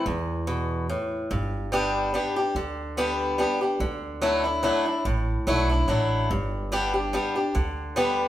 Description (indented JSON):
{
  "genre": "bluegrass",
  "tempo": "144 BPM",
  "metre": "3/4",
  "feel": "swing 54% on 8ths",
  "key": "G major",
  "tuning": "A4 = 442 Hz",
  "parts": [
    { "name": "picked swing-style acoustic guitar", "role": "accompaniment", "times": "0.0-8.3 s", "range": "E2 to G4", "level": "-24 LUFS", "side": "left 1 dB", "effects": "none" },
    { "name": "upright bass", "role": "bass", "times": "0.1-8.3 s", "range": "G1 to E2", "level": "-29 LUFS", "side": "right 1 dB", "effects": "none" }
  ],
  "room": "moderate large studio reverb, RT60 1.1 s",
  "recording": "band playing live in one room",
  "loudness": "-23 LUFS",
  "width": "side -13 dB against mid",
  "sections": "0.0-8.3 A section",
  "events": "none",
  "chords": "0.0 A5; 1.3 G; 3.8 Dadd9; 6.3 G"
}